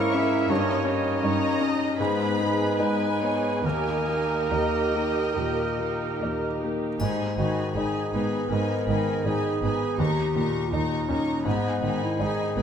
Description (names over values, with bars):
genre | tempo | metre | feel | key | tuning
classical, romantic movement for piano and orchestra | 68-83 BPM | 4/4 | rubato | G# minor | A4 = 437 Hz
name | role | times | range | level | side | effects
clear grand piano | melody | 0.0-12.6 s | D#2 to E4 | -27 LUFS | left 2 dB | none
rich studio violin section | melody | 0.0-12.6 s | G5 to C#6 | -35 LUFS | left 2 dB | none
dark studio violin section | second line | 0.0-12.6 s | G#4 to A#5 | -34 LUFS | left 3 dB | none
mellow clarinet | second line | 0.0-12.6 s | B3 to A#4 | -32 LUFS | equal | none
warm cor anglais | second line | 0.0-6.7 s | A#4 to C#5 | -32 LUFS | right 3 dB | none
rich studio viola section | accompaniment | 0.0-12.6 s | B3 to D#5 | -33 LUFS | right 3 dB | none
warm bassoon | accompaniment | 0.0-6.7 s | G#3 to A#3 | -33 LUFS | right 6 dB | none
clear French horn section | sustained chords | 0.0-6.7 s | A#3 to E4 | -34 LUFS | left 2 dB | none
rich studio cello section | bass | 0.0-12.6 s | D#2 to G#2 | -34 LUFS | right 4 dB | none
rich studio double bass section | bass | 7.0-12.6 s | G#1 to D#2 | -33 LUFS | right 4 dB | none
triangle | percussion | 7.0-8.5 s | none | -45 LUFS | left 3 dB | none
room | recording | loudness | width
moderate concert hall reverb, RT60 2.0 s | faint mains hum | -23 LUFS | side -8 dB against mid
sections
0.0-7.0 A section; 7.0-12.6 B section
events
none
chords
0.5 D#7/G; 2.0 G#m; 3.6 D#; 7.0 G#m; 10.0 D#7; 11.5 G#m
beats
| 0.50 1.23 1.99 2.78 | 3.63 4.50 5.36 6.20 | 7.00 7.75 8.51 9.26 | 9.99 10.72 11.46 12.20